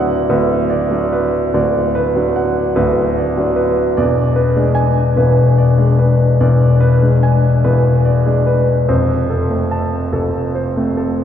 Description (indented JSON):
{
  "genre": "classical, romantic nocturne for solo piano",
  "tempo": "49 BPM",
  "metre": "4/4",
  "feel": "rubato",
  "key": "unclear",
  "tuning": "A4 = 441 Hz",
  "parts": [
    { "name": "warm concert grand piano", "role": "solo", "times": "0.0-11.2 s", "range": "D1 to A5", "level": "-12 LUFS", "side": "left 1 dB", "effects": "none" }
  ],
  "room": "wet church reverb, RT60 2.7 s",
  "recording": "heard from further back in the room",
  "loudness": "-12 LUFS",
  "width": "side -9 dB against mid",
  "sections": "0.0-11.2 A section",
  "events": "none",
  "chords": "0.0 Bm/D; 4.0 E7; 8.9 F"
}